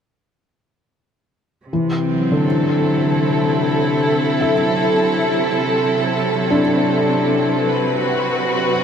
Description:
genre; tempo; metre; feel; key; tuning
ambient; free time; none; none; C lydian; A4 = 440 Hz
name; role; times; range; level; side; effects
rich studio string section; sustained chords; 1.7-8.8 s; C3 to B4; -17 LUFS; right 1 dB; none
felt-muted upright piano; arpeggios; 1.7-8.8 s; D3 to E5; -20 LUFS; left 2 dB; ping-pong delay
room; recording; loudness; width
wet huge ambient reverb, RT60 7.7 s; none; -15 LUFS; side -7 dB against mid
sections
1.7-8.8 A section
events
none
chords
1.7 Cmaj9#11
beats
free time

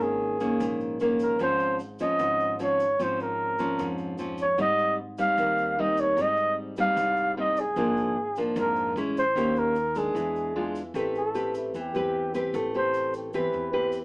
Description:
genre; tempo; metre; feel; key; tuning
bossa nova; 151 BPM; 4/4; straight; Ab major; A4 = 442 Hz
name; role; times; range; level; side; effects
mellow flugelhorn; melody; 0.0-13.9 s; E4 to F5; -25 LUFS; equal; none
nylon-string guitar; accompaniment; 0.0-14.0 s; Ab2 to B4; -28 LUFS; equal; none
upright bass; bass; 0.0-14.0 s; Ab1 to F2; -40 LUFS; equal; none
tube shaker; percussion; 0.0-14.0 s; none; -56 LUFS; right 2 dB; none
room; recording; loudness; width
moderate studio reverb, RT60 0.6 s; AM radio sound; -24 LUFS; side -27 dB against mid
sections
0.0-10.9 A section; 10.9-14.0 B section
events
flugelhorn solo 10.9-14.0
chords
0.0 Eb7sus4/Ab; 1.4 Dbmaj7/Ab; 4.6 Abmaj7; 7.8 Bb7/Ab; 9.0 Amaj7; 9.4 Eb7; 10.2 E7b9; 10.9 Am9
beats
0.21 0.60 1.00 | 1.40 1.80 2.20 2.60 | 3.00 3.39 3.79 4.19 | 4.59 4.99 5.38 5.78 | 6.18 6.58 6.97 7.37 | 7.77 8.16 8.56 8.96 | 9.36 9.75 10.15 10.55 | 10.95 11.34 11.74 12.14 | 12.54 12.93 13.33 13.73

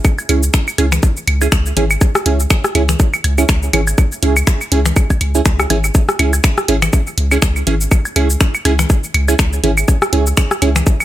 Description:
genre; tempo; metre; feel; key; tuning
minimal techno; 122 BPM; 4/4; swing 56% on 16ths; C# minor; A4 = 440 Hz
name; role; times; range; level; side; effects
electronic kick drum; drums; 0.0-11.0 s; none; -12 LUFS; equal; overdrive, studio ambience
garage drum kit; drums; 0.0-11.0 s; cabasa, finger snaps, hi-hat; -20 LUFS; left 1 dB; overdrive, studio ambience
electronic claves, woodblock, congas and rim click; percussion; 0.0-11.0 s; none; -19 LUFS; left 2 dB; studio ambience, dub echo
wavetable chord stab; stabs; 0.3-10.7 s; C#4 to G#4; -20 LUFS; right 4 dB; cassette tape, dub echo
punchy sub bass; bass; 0.3-10.8 s; G#1 to C#2; -16 LUFS; equal; tube saturation, sidechain pumping
room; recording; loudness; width
digital ambience; none; -12 LUFS; side -14 dB against mid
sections
0.0-11.0 A section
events
none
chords
0.0 C#m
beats
0.05 0.54 | 1.03 1.52 2.01 2.50 | 3.00 3.49 3.98 4.47 | 4.96 5.46 5.95 6.44 | 6.93 7.42 7.92 8.41 | 8.90 9.39 9.88 10.37 | 10.87

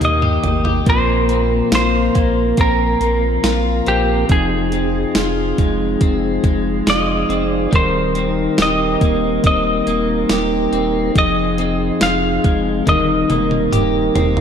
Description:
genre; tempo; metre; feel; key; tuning
dream pop; 70 BPM; 4/4; straight; Eb major; A4 = 440 Hz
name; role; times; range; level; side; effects
semi-hollow electric guitar; melody; 0.0-13.7 s; G4 to F5; -20 LUFS; equal; tape echo
mellow tonewheel organ; sustained chords; 0.0-14.4 s; Eb3 to Bb4; -20 LUFS; right 2 dB; slow rotary speaker
electric guitar at the edge of break-up; arpeggios; 0.0-14.4 s; F2 to G4; -21 LUFS; left 5 dB; analog chorus, tape echo
warm sub bass; bass; 0.0-14.4 s; Eb1 to Eb2; -23 LUFS; equal; none
clean 12-bit digital drum machine; drums; 0.0-14.4 s; hi-hat, kick drum, snare drum, tambourine, toms; -18 LUFS; right 1 dB; none
room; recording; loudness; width
moderate plate reverb, RT60 3.0 s; dreamy mix soaked in reverb; -14 LUFS; side -8 dB against mid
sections
0.9-14.4 A section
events
drum fill 0.0-0.9, 12.9-14.4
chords
0.0 Eb; 0.9 Bbsus2; 4.3 Fm7; 7.7 Eb6; 11.2 Fm7; 12.9 Eb6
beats
0.01 | 0.87 1.73 2.58 3.44 | 4.30 5.16 6.01 6.87 | 7.73 8.58 9.44 10.30 | 11.15 12.01 12.87 13.73

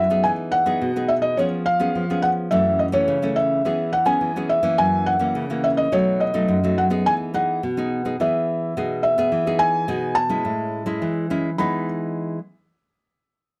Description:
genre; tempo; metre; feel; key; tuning
samba; 106 BPM; 4/4; straight; E major; A4 = 442 Hz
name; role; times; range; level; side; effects
felt-muted upright piano; melody; 0.0-11.9 s; C#5 to B5; -23 LUFS; equal; none
nylon-string guitar; accompaniment; 0.0-12.4 s; F#2 to G#4; -25 LUFS; equal; none
room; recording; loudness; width
light reverb; close, detailed microphones; -21 LUFS; mono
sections
0.0-9.3 A section; 9.3-11.6 B section; 11.6-13.6 C section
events
none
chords
0.3 Emaj7; 1.4 C#7/E#; 2.5 F#m7; 3.7 C#m7/E; 4.8 F#7; 5.9 B7; 7.1 Emaj7; 10.5 Amaj7; 11.6 Emaj7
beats
| 0.25 0.82 1.38 1.95 | 2.52 3.08 3.65 4.22 | 4.79 5.35 5.92 6.49 | 7.06 7.63 8.19 8.76 | 9.33 9.90 10.46 11.03 | 11.60 12.16

